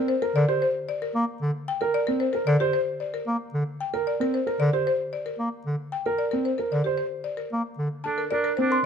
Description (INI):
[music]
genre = classical, minimalist pattern music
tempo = 113 BPM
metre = 4/4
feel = straight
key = unclear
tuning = A4 = 440 Hz
[part]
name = buzzing marimba with medium hard mallets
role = melody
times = 0.0-8.9 s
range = G4 to A5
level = -27 LUFS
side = left 6 dB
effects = none
[part]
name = dark grand piano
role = arpeggios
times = 0.0-8.8 s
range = C4 to C5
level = -26 LUFS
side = right 5 dB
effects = none
[part]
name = clear bass clarinet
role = accompaniment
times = 0.4-7.9 s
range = D3 to Bb3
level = -26 LUFS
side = equal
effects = none
[part]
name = warm oboe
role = second line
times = 8.1-8.8 s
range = D4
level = -28 LUFS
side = right 3 dB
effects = none
[part]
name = large celesta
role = arpeggios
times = 8.7-8.9 s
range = C6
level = -22 LUFS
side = right 2 dB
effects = none
[sound]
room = moderate large studio reverb, RT60 1.4 s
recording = close, detailed microphones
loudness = -23 LUFS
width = side -7 dB against mid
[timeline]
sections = 0.0-8.1 A section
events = none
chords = 0.0 Gm (rootless); 8.1 Bbmaj7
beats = 0.09 0.62 1.15 | 1.68 2.21 2.74 3.27 | 3.81 4.34 4.87 5.40 | 5.93 6.46 6.99 7.52 | 8.05 8.58